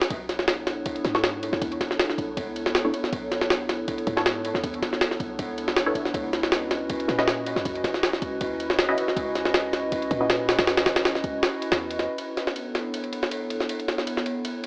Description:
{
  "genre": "drum and bass, jungle",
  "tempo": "159 BPM",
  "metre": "4/4",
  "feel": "swing 54% on 16ths",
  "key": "B dorian",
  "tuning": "A4 = 440 Hz",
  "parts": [
    { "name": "filtered dub chord stab", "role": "stabs", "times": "0.0-10.3 s", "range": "B3 to D#5", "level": "-30 LUFS", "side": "equal", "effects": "phaser, dub echo" },
    { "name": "jungle sampler-style drum kit", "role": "drums", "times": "0.0-14.7 s", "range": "kick drum, ride cymbal, snare drum", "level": "-25 LUFS", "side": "equal", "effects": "high-pass filter on snare, small room ambience, high-pass filter on cymbals, high-pass filter on kick" },
    { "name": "warbly tape-like pad", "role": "sustained chords", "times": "0.3-14.7 s", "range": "B3 to D#5", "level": "-28 LUFS", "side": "equal", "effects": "chorus, built-in reverb" },
    { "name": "warm 808-style bass", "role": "bass", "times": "0.1-12.1 s", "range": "F#1 to A#2", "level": "-36 LUFS", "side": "equal", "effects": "tube saturation" }
  ],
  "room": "moderate digital room reverb, RT60 1.2 s, digital ambience",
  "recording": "dry, gritty hardware recording, AM radio sound",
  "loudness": "-23 LUFS",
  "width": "side -28 dB against mid",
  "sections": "0.0-12.2 A section; 12.2-14.7 B section",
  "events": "none",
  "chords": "0.1 Bm11; 6.1 C#m11; 12.2 Bm11",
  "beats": "| 0.11 0.48 0.86 1.24 | 1.62 1.99 2.37 2.75 | 3.13 3.50 3.88 4.26 | 4.63 5.01 5.39 5.77 | 6.14 6.52 6.90 7.28 | 7.65 8.03 8.41 8.79 | 9.16 9.54 9.92 10.30 | 10.67 11.05 11.43 11.80 | 12.18 12.56 12.94 13.31 | 13.69 14.07 14.45"
}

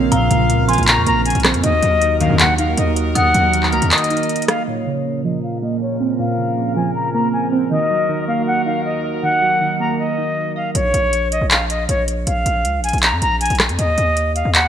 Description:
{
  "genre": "hip hop, trap",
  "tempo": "158 BPM",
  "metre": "4/4",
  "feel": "half-time",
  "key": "Bb minor",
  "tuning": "A4 = 440 Hz",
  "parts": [
    { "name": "glassy digital keys", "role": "accompaniment", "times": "0.0-10.8 s", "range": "Bb2 to Eb5", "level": "-20 LUFS", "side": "right 3 dB", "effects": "chorus, low-pass filter" },
    { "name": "clear brass ensemble", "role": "sustained chords", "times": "0.0-10.7 s", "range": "Eb2 to F5", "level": "-27 LUFS", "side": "equal", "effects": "low-pass filter" },
    { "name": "distorted 808-style bass", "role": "bass", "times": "0.0-3.9, 10.8-14.7 s", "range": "Bb1 to F2", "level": "-20 LUFS", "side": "equal", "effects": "distortion" },
    { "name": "bright reedy concert flute", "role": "melody", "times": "0.1-14.7 s", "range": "Db5 to Bb5", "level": "-19 LUFS", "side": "left 2 dB", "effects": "low-pass filter" },
    { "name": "dark detuned synth bell", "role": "second line", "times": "0.1-4.3 s", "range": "Bb5 to F6", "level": "-25 LUFS", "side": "left 1 dB", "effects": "chorus, phaser, tape echo" },
    { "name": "booming analog drum machine", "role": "drums", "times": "0.1-4.6, 10.8-14.6 s", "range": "handclaps, hi-hat, rim click", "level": "-18 LUFS", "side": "equal", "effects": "overdrive" },
    { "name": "big bright polysynth", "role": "stabs", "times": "2.2-2.5 s", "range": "Bb1 to Eb3", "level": "-20 LUFS", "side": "left 4 dB", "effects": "tremolo" }
  ],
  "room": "moderate scoring stage reverb, RT60 1.5 s",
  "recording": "none",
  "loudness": "-15 LUFS",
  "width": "side -9 dB against mid",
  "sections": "0.0-4.7 A section; 4.7-10.8 B section; 10.8-14.7 C section",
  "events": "break 3.9-4.7; filter sweep 4.7-10.8",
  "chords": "0.0 Bbmadd9; 1.6 Ebm; 4.7 Bbmadd9; 7.7 Ebm; 10.8 Bbm; 13.8 N.C.",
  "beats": "| 0.12 0.50 0.88 1.26 | 1.64 2.02 2.40 2.77 | 3.15 3.53 3.91 4.29 | 4.67 5.05 5.43 5.81 | 6.19 6.57 6.95 7.33 | 7.71 8.09 8.47 8.85 | 9.23 9.61 9.99 10.37 | 10.75 11.13 11.51 11.89 | 12.27 12.65 13.03 13.41 | 13.79 14.17 14.55"
}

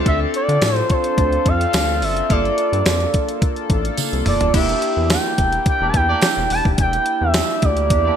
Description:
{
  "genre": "early-eighties boogie funk",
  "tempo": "107 BPM",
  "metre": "4/4",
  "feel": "straight",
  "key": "unclear",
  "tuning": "A4 = 437 Hz",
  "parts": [
    { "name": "chorused polysynth", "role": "accompaniment", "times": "0.0-8.2 s", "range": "Bb3 to A4", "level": "-23 LUFS", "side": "left 1 dB", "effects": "none" },
    { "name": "expressive portamento lead", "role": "melody", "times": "0.1-8.2 s", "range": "C5 to A5", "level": "-20 LUFS", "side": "right 1 dB", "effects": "chorus, ping-pong delay" },
    { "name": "rubbery square bass", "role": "bass", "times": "0.1-8.1 s", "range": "Eb1 to D3", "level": "-22 LUFS", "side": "equal", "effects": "none" },
    { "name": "clean 12-bit digital drum machine", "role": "drums", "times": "0.1-8.0 s", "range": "crash cymbal, hi-hat, kick drum, snare drum, toms", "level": "-20 LUFS", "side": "equal", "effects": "gated reverb" },
    { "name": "tambourine", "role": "percussion", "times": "0.6-7.5 s", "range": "none", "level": "-29 LUFS", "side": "right 11 dB", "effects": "none" },
    { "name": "clear horn section", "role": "second line", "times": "5.8-8.2 s", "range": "Bb3 to D5", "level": "-25 LUFS", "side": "right 3 dB", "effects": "none" }
  ],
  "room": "light reverb, digital ambience",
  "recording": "bright 1980s-style digital production",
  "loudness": "-15 LUFS",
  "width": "side -8 dB against mid",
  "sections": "0.0-4.5 A section; 4.5-8.2 B section",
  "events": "drum fill 4.0-4.5",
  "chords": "0.0 Dm7; 2.3 Gm9; 4.5 Em7b5",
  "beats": "| 0.06 0.62 1.18 1.74 | 2.30 2.86 3.42 3.98 | 4.54 5.10 5.66 6.22 | 6.79 7.35 7.91"
}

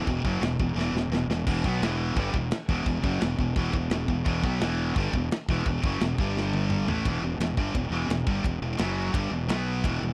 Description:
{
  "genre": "heavy metal",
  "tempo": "172 BPM",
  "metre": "4/4",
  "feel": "straight",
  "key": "E minor",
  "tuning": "A4 = 440 Hz",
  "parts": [
    { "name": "heavy high-gain guitar", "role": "riff", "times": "0.0-10.1 s", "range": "E2 to B3", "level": "-35 LUFS", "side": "equal", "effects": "distortion" },
    { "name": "sludgy distorted guitar", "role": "riff", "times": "0.0-10.1 s", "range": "E2 to B3", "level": "-33 LUFS", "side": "equal", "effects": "overdrive" },
    { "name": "fuzz fingered electric bass", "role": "bass", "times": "0.0-10.1 s", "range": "E1 to B1", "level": "-32 LUFS", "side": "equal", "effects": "overdrive" },
    { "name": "tight metal drum kit", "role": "drums", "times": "0.1-9.9 s", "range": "china cymbal, crash cymbal, kick drum, ride cymbal, snare drum, toms", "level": "-32 LUFS", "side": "equal", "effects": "none" }
  ],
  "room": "little or no reverb",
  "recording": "dry, close 1970s-style studio recording",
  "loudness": "-27 LUFS",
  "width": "mono",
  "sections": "0.0-7.0 A section; 7.0-10.1 B section",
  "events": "drum fill 0.8-1.5, 6.4-7.0",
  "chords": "0.0 Em; 6.2 G5; 6.9 A5; 7.0 Em; 8.8 F#5; 9.1 Em; 9.5 B5",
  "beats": "| 0.08 0.43 0.78 1.12 | 1.47 1.82 2.17 2.52 | 2.87 3.22 3.57 3.92 | 4.26 4.61 4.96 5.31 | 5.66 6.00 6.35 6.70 | 7.05 7.40 7.75 8.09 | 8.44 8.79 9.14 9.49 | 9.84"
}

